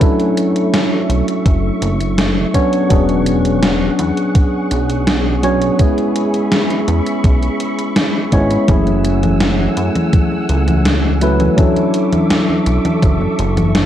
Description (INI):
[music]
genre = vaporwave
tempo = 83 BPM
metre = 4/4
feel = straight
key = F# minor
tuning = A4 = 440 Hz
[part]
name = tine electric piano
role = accompaniment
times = 0.0-13.9 s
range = F#3 to C#5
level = -16 LUFS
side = equal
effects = wide subtle chorus, tape echo
[part]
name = soft string machine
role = sustained chords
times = 0.0-13.9 s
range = A3 to E6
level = -24 LUFS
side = equal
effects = ensemble chorus
[part]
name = electronic kick drum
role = drums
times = 0.0-13.2 s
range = none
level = -13 LUFS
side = equal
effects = overdrive
[part]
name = gated 80s digital drum machine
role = drums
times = 0.0-13.9 s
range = congas, hi-hat, snare drum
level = -18 LUFS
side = left 1 dB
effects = gated reverb, gated reverb snare, overdrive
[part]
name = chorused synth bass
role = bass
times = 1.1-13.9 s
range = E1 to F#2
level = -17 LUFS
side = equal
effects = none
[sound]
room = light reverb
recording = dry, gritty hardware recording, cassette tape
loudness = -12 LUFS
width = side -11 dB against mid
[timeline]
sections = 0.0-13.9 A section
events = none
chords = 0.0 Bm11 (rootless); 2.5 E13; 5.8 C#m7; 8.7 F#m9; 11.6 Bm11 (rootless)